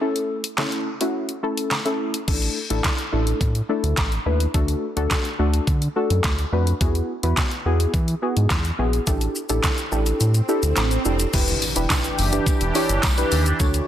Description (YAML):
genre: dance-pop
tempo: 106 BPM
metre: 4/4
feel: straight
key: unclear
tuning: A4 = 440 Hz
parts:
  - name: deep mellow chord stab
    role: accompaniment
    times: 0.0-13.9 s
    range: A3 to C#5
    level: -24 LUFS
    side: left 1 dB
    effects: chorus, sidechain pumping
  - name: pop drum kit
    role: drums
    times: 0.2-13.9 s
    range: crash cymbal, handclaps, hi-hat, kick drum, shaker, snare drum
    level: -23 LUFS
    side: equal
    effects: none
  - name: round analog bass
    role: bass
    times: 2.3-13.8 s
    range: E1 to E3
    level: -21 LUFS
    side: equal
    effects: sidechain pumping
  - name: swell and impact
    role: sound effects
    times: 9.9-13.6 s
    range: none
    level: -31 LUFS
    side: right 2 dB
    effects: none
  - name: sweeping resonant pad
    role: sustained chords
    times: 11.6-13.9 s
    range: D3 to C#5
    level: -26 LUFS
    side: right 1 dB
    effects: chorus, sidechain pumping
  - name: tambourine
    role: percussion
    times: 11.3-13.7 s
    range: none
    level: -36 LUFS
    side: right 8 dB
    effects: none
room: light reverb, digital ambience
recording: dense, heavily limited modern master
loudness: -19 LUFS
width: side -11 dB against mid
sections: 0.0-2.3 A section; 2.3-11.3 B section; 11.3-13.9 C section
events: break 0.0-2.3; swell 9.9-11.3; kick muted 10.2-11.3; impact 11.3-13.6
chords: 0.0 A; 2.3 Asus4; 4.5 D; 6.8 Eadd9; 9.1 A7sus4; 11.3 Em7